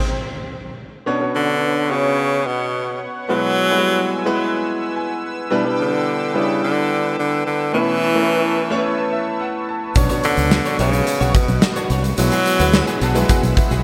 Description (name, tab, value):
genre	1980s-style pop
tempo	108 BPM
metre	4/4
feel	straight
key	B minor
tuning	A4 = 443 Hz
part	bright tenor saxophone	melody	0.0-13.2 s	B2 to C4	-22 LUFS	equal	digital delay
part	bright concert grand piano	accompaniment	1.1-13.8 s	B2 to A5	-24 LUFS	equal	none
part	brassy analog pad	sustained chords	1.1-13.8 s	G#4 to E6	-30 LUFS	equal	chorus, tremolo
part	direct-recorded clean electric guitar	riff	10.0-13.8 s	B3 to C#5	-31 LUFS	equal	ensemble chorus
part	fretless electric bass	bass	10.0-13.8 s	B1 to D2	-21 LUFS	equal	ensemble chorus
part	huge arena drum kit	drums	10.0-13.8 s	hi-hat, kick drum, snare drum, tambourine	-22 LUFS	equal	none
part	tube shaker	percussion	10.0-13.8 s	none	-41 LUFS	equal	none
room	light reverb, studio ambience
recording	none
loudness	-19 LUFS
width	mono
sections	0.0-1.1 A section; 1.1-13.8 A section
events	stop 0.0-1.1; grand piano fill 4.7-5.5, 8.8-10.0, 12.7-13.8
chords	0.0 N.C.; 1.1 Bmadd9; 3.3 Eadd9/B; 5.5 G6/B; 7.7 Aadd9/B; 10.0 Bmadd9; 12.2 Eadd9/B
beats	0.51 | 1.07 1.62 2.18 2.73 | 3.29 3.85 4.40 4.96 | 5.51 6.07 6.62 7.18 | 7.73 8.29 8.85 9.40 | 9.96 10.51 11.07 11.62 | 12.18 12.73 13.29